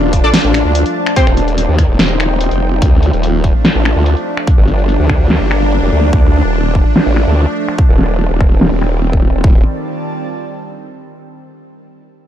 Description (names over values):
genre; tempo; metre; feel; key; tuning
heavy wobble dubstep; 145 BPM; 4/4; half-time; D phrygian; A4 = 440 Hz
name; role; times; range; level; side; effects
evolving wavetable pad; sustained chords; 0.0-9.6 s; Eb3 to Eb4; -19 LUFS; equal; phaser, built-in reverb, sidechain pumping
formant-sweep wobble bass; bass; 0.0-9.6 s; D1 to Eb2; -13 LUFS; equal; chorus, overdrive
airy breathy pad; texture; 0.0-11.1 s; Eb4 to Bb5; -25 LUFS; left 1 dB; chorus, sidechain pumping
big-room dance drum kit; drums; 0.1-9.2 s; finger snaps, hi-hat, snare drum; -15 LUFS; equal; low-pass filter on snare, low-pass filter on hats
electronic kick drum; drums; 0.1-9.5 s; none; -11 LUFS; equal; none
orchestra-hit-like synth stab; stabs; 0.2-1.3 s; C4 to D5; -20 LUFS; left 1 dB; built-in reverb, cassette tape, dub echo
room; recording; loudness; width
little or no reverb; none; -10 LUFS; side -11 dB against mid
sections
0.0-9.4 A section; 9.4-11.1 B section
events
fade-out on analog synth pad 0.0-9.4; filter sweep on drum 0.0-9.4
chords
0.0 Dm; 1.2 Cm/Eb; 4.5 Gm; 6.1 Dm; 7.8 Cm/Eb; 9.4 Dm